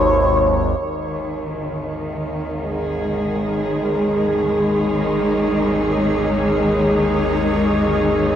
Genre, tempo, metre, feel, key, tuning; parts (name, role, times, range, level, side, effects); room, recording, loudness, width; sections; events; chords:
dark ambient drone; free time; A4 = 438 Hz
overtone-sweeping drone; drone; 0.0-8.4 s; G#1 to D#2; -23 LUFS; equal; chorus, built-in reverb
bubbling stepped-filter texture; texture; 0.0-8.4 s; C#5; -25 LUFS; left 1 dB; chorus, built-in reverb, shimmer reverb
dark studio cello section; sustained chords; 0.8-8.4 s; D#3 to G#4; -18 LUFS; equal
wet huge ambient reverb, RT60 7.4 s; dark, warm production; -17 LUFS; side -10 dB against mid
0.8-8.4 A section
fade-in on synth drone 0.8-8.4; fade-in on synth texture 0.8-8.4
0.0 G#5